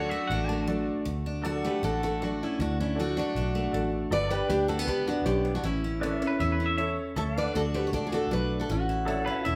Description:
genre	honky-tonk and classic country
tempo	157 BPM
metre	4/4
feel	straight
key	D major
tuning	A4 = 440 Hz
part	twangy electric guitar	second line	0.0-0.6, 6.3-7.0, 9.3-9.6 s	B4 to A5	-34 LUFS	equal	none
part	bright concert grand piano	accompaniment	0.0-9.4 s	E4 to D5	-41 LUFS	equal	none
part	picked steel-string acoustic guitar	accompaniment	0.0-9.6 s	F#2 to F#4	-35 LUFS	equal	none
part	pedal steel guitar	sustained chords	0.0-9.6 s	A4 to G5	-40 LUFS	equal	none
part	warm chamber string section	sustained chords	0.0-1.0 s	D3 to F#4	-42 LUFS	equal	none
part	vintage muted fingered electric bass	bass	0.0-9.6 s	E1 to E2	-34 LUFS	equal	none
part	picked steel-string acoustic guitar	melody	1.6-9.6 s	A3 to E5	-32 LUFS	equal	none
room	wet large studio reverb, RT60 1.1 s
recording	band playing live in one room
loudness	-29 LUFS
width	mono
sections	0.0-1.1 A section; 1.1-9.6 B section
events	clean electric guitar solo 0.0-1.1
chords	0.0 D; 4.1 G; 5.6 A; 7.2 D; 8.7 A

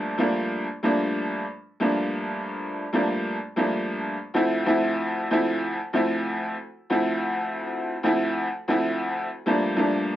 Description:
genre	hip hop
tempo	94 BPM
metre	4/4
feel	swing 58% on 16ths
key	D minor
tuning	A4 = 440 Hz
part	bright upright piano	solo	0.0-10.2 s	D2 to E4	-23 LUFS	equal	cassette tape, high-pass filter, low-pass filter
room	moderate small room reverb, RT60 0.5 s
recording	rough home demo mix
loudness	-23 LUFS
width	side -13 dB against mid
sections	0.0-10.2 A section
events	none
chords	0.0 Gm9; 4.4 Dm9; 9.5 Gm9

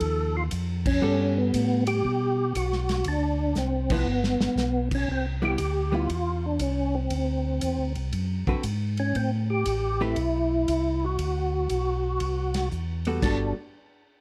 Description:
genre	soul jazz organ trio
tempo	118 BPM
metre	4/4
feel	swing 67% on 8ths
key	G major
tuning	A4 = 440 Hz
part	percussive tonewheel organ	melody	0.0-13.5 s	B3 to A4	-29 LUFS	equal	slow rotary speaker, overdrive, chorus vibrato, plate reverb
part	archtop guitar, miked and amplified	accompaniment	0.0-13.5 s	D3 to B4	-32 LUFS	equal	none
part	mellow tonewheel organ	bass	0.0-13.5 s	G1 to B2	-30 LUFS	equal	overdrive, chorus vibrato, slow rotary speaker
part	warm soul drum kit	drums	0.0-13.4 s	crash cymbal, hi-hat, kick drum, ride cymbal, snare drum	-36 LUFS	equal	none
room	moderate studio reverb, RT60 0.7 s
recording	none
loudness	-26 LUFS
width	mono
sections	0.0-5.1 A section; 5.1-13.2 B section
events	band accent 0.8, 3.8; drum fill 3.6-4.6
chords	0.0 F9; 1.0 Gmaj9; 3.0 Dm7; 4.1 G; 5.1 Cmaj7; 7.1 D9; 9.2 Am9; 11.2 D13; 13.2 Gmaj9

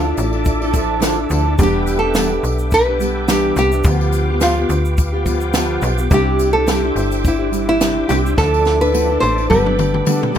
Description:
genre	acoustic pop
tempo	106 BPM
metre	4/4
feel	swing 55% on 16ths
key	C major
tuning	A4 = 440 Hz
part	nylon-string guitar	melody	0.0-10.3 s	E4 to C5	-19 LUFS	equal	none
part	fingerpicked steel-string acoustic guitar	accompaniment	0.0-10.4 s	G2 to A4	-19 LUFS	right 1 dB	none
part	bright tonewheel organ	sustained chords	0.0-10.4 s	A4 to D6	-27 LUFS	equal	chorus vibrato, slow rotary speaker
part	slap-like FM bass	bass	0.0-10.4 s	E1 to D2	-20 LUFS	equal	none
part	compact cocktail drum kit	drums	0.2-10.4 s	kick drum, shaker, snare drum, toms	-19 LUFS	equal	none
part	tambourine	percussion	0.2-10.4 s	none	-33 LUFS	left 6 dB	none
room	light reverb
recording	none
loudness	-14 LUFS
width	side -9 dB against mid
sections	0.0-10.4 A section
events	drum fill 8.4-10.4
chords	0.0 Dmadd9; 1.6 Em7; 3.9 G7/D; 6.1 Cadd9; 8.4 Dmadd9; 9.5 Gadd9

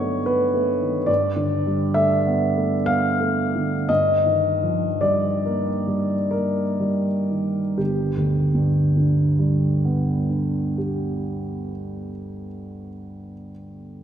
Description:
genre	classical, impressionist solo piano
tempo	39-76 BPM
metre	3/4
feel	rubato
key	G mixolydian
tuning	A4 = 441 Hz
part	clear concert grand piano	solo	0.0-14.0 s	G1 to F5	-20 LUFS	equal	none
room	wet concert hall reverb, RT60 2.6 s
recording	none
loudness	-19 LUFS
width	side -9 dB against mid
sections	0.0-7.8 A section; 7.8-12.0 B section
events	slowing down 0.0-7.8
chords	0.0 B7/G; 1.1 Gadd9; 3.9 Ebadd9/G; 7.8 G

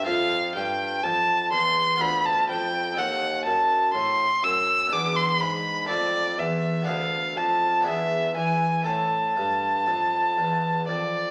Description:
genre	classical, baroque-style sonata movement with continuo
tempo	62 BPM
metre	3/4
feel	straight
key	A minor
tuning	A4 = 440 Hz
part	warm violin	melody	0.0-11.3 s	D5 to E6	-25 LUFS	equal	none
part	harpsichord	accompaniment	0.0-11.3 s	D2 to A4	-34 LUFS	equal	none
part	mellow bassoon	bass	0.0-11.3 s	D2 to E3	-34 LUFS	equal	none
room	wet recital hall reverb, RT60 1.3 s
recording	vinyl crackle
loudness	-24 LUFS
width	mono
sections	0.0-11.3 A section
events	none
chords	0.0 Am; 2.0 Bm7b5/D; 3.0 D#dim7; 4.9 E7; 5.9 F; 6.9 Bm7b5/D; 7.9 E7; 8.9 Am

